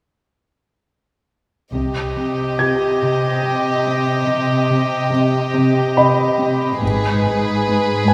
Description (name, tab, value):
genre	cinematic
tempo	71 BPM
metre	3/4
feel	straight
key	C harmonic minor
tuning	A4 = 440 Hz
part	warm studio violin section	second line	1.7-8.1 s	G4 to Eb5	-22 LUFS	equal	none
part	dark studio cello section	riff	1.7-8.1 s	Ab2 to C4	-24 LUFS	equal	none
part	dark studio double bass section	bass	1.7-2.5, 6.8-7.6 s	Ab1 to C2	-30 LUFS	equal	none
part	warm studio cello section	bass	1.7-8.1 s	Ab2 to C3	-24 LUFS	equal	none
part	felt-muted upright piano	texture	2.6-8.1 s	G4 to Ab6	-24 LUFS	equal	none
room	wet concert hall reverb, RT60 2.4 s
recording	recorded in a church or concert hall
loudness	-18 LUFS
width	mono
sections	1.7-8.1 A section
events	none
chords	1.7 Cm; 6.8 Abm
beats	| 1.75 2.59 3.44 | 4.28 5.13 5.97 | 6.82 7.66